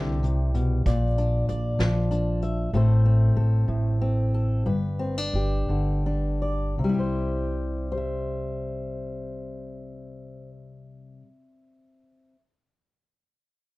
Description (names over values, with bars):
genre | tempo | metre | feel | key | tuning
acoustic folk duo or small band | 53-64 BPM (dotted quarters) | 6/8 | straight | C major | A4 = 440 Hz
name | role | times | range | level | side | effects
fingerpicked steel-string acoustic guitar | accompaniment | 0.0-12.4 s | G2 to E5 | -27 LUFS | left 2 dB | none
upright bass | bass | 0.0-11.2 s | G1 to C2 | -25 LUFS | right 1 dB | none
vintage brush drum kit | drums | 0.2-2.6 s | hi-hat, kick drum, snare drum | -30 LUFS | equal | none
room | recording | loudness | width
little or no reverb | dark, warm production | -22 LUFS | side -20 dB against mid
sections
0.0-6.8 A section; 6.8-11.3 B section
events
slowing down 2.7-6.8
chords
0.0 C; 0.8 Bb; 2.7 Am; 4.7 G; 6.8 C